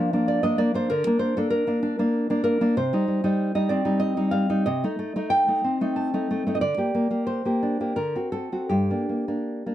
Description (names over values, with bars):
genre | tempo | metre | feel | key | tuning
romantic piece for solo classical guitar | 78-98 BPM | 3/4 | rubato | G minor | A4 = 440 Hz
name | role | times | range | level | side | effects
nylon-string guitar | solo | 0.0-9.7 s | G2 to A5 | -22 LUFS | equal | none
room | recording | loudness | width
light reverb | dry, close 1970s-style studio recording | -22 LUFS | side -12 dB against mid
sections
0.0-9.7 A section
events
none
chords
0.0 Bb; 0.9 Bb/D; 2.8 Cm; 4.7 Adim/C; 6.6 Gm/D; 8.0 D7; 8.7 Gm